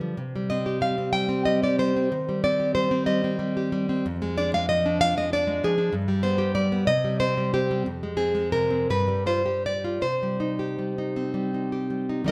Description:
romantic piece for solo classical guitar; 51-65 BPM (dotted quarters); 6/8; rubato; C minor; A4 = 437 Hz
nylon-string guitar; solo; 0.0-12.3 s; F2 to G5; -25 LUFS; equal
moderate recital hall reverb, RT60 1.7 s; -25 LUFS; mono
0.0-12.3 A section
0.2 C5; 2.1 Cm/Eb; 4.1 Ddim/F; 5.9 G; 6.9 C5; 7.9 Fm; 8.9 G7; 10.0 Cm

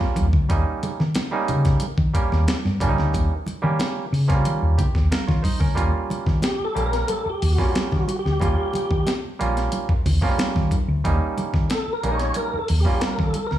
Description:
funk; 91 BPM; 4/4; straight; Eb mixolydian; A4 = 440 Hz
mellow clav; stabs; 0.0-13.4 s; F3 to F5; -27 LUFS; right 4 dB
breakbeat sampler-style drum kit; drums; 0.0-13.6 s; hi-hat, kick drum, snare drum; -24 LUFS; equal
hollow-body short-scale fingered electric bass; bass; 0.2-13.6 s; Bb1 to Eb3; -22 LUFS; equal
congas; percussion; 0.2-13.5 s; -30 LUFS; right 2 dB
mellow tonewheel organ; melody; 6.4-13.6 s; Gb4 to Db5; -26 LUFS; left 1 dB; chorus vibrato, fast rotary speaker, slapback echo
digital ambience; studio reverb; -19 LUFS; side -12 dB against mid
0.0-5.8 A section; 5.8-13.6 B section
clav fill 4.5-5.8; tonewheel organ solo 5.8-13.6
0.0 Eb9

